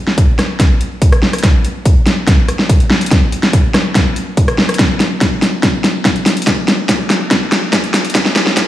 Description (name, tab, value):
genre	dubstep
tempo	143 BPM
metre	4/4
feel	half-time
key	none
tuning	none
part	dubstep drum kit	drums	0.1-8.7 s	hi-hat, rim click, snare drum	-13 LUFS	equal	none
part	electronic kick drum	drums	0.2-8.7 s	none	-12 LUFS	equal	none
room	wet plate reverb, RT60 1.8 s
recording	played on a big sound system in a bare room, stone room reverb, high-pass filter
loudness	-10 LUFS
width	side -13 dB against mid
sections	0.0-8.7 A section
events	build-up 0.0-8.7; drum fill 0.0-8.7; filter sweep 0.0-8.7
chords	none